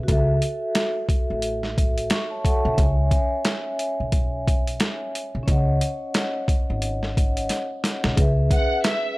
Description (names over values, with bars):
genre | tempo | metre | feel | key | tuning
hip hop, boom-bap hip-hop | 89 BPM | 4/4 | swing 60% on 16ths | C# minor | A4 = 440 Hz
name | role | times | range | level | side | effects
vibraphone with soft mallets | accompaniment | 0.0-9.2 s | C#4 to C#6 | -26 LUFS | equal | cassette tape, high-pass filter, low-pass filter
upright bass | bass | 0.0-8.5 s | G#1 to C#2 | -24 LUFS | equal | transformer saturation
boom bap sampler-style drum kit | drums | 0.1-9.0 s | hi-hat, kick drum, snare drum | -22 LUFS | equal | none
warm studio violin section | melody | 8.5-9.2 s | E5 to F#5 | -25 LUFS | equal | high-pass filter, low-pass filter
room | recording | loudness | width
small room reverb | dry, gritty hardware recording | -20 LUFS | side -21 dB against mid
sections
0.0-8.2 A section; 8.2-9.2 B section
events
drum fill 7.5-8.2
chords
0.1 F#m7; 2.8 E; 5.5 G#7sus4; 8.2 C#m7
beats
| 0.08 0.76 1.43 2.11 | 2.78 3.46 4.13 4.80 | 5.48 6.15 6.83 7.50 | 8.17 8.85